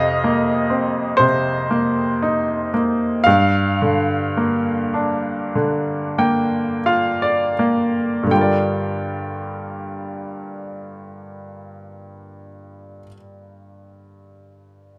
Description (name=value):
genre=classical, lyrical solo piano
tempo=40-63 BPM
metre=4/4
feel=rubato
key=G minor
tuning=A4 = 440 Hz
part: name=bright baby grand piano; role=solo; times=0.0-15.0 s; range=F2 to G5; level=-20 LUFS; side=equal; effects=none
room=light reverb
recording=none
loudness=-19 LUFS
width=mono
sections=0.0-8.3 A section; 8.3-14.1 B section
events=slowing down 0.0-8.3; grand piano fill 5.5-8.3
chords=0.0 F7sus4; 3.3 Gm7